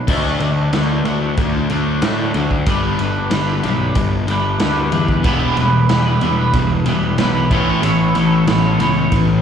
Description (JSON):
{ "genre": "quiet-loud alternative rock", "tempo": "93 BPM", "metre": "4/4", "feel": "straight", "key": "unclear", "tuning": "A4 = 439 Hz", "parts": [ { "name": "twangy electric guitar", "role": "arpeggios", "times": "0.0-9.3 s", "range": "D3 to C#5", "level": "-21 LUFS", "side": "right 2 dB", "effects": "lush chorus, slapback echo" }, { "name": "thick fuzz guitar", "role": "riff", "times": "0.1-9.4 s", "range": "E2 to D4", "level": "-19 LUFS", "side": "left 8 dB", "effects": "distortion" }, { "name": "fuzz picked electric bass", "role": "bass", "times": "0.1-9.4 s", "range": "E1 to A2", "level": "-20 LUFS", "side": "right 1 dB", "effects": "overdrive" }, { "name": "raw garage drum kit", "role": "drums", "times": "0.1-9.3 s", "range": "crash cymbal, kick drum, ride cymbal, snare drum", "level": "-22 LUFS", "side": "right 1 dB", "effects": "none" }, { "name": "fuzz guitar", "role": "riff", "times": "5.2-9.4 s", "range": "A2 to B3", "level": "-21 LUFS", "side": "right 10 dB", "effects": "distortion" } ], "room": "light reverb, small room ambience", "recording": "live gig heard through the venue's PA, club reverb", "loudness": "-14 LUFS", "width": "side -8 dB against mid", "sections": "0.1-9.4 A section", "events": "none", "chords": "0.1 D; 2.7 Gadd9; 5.3 Em; 7.5 Aadd9" }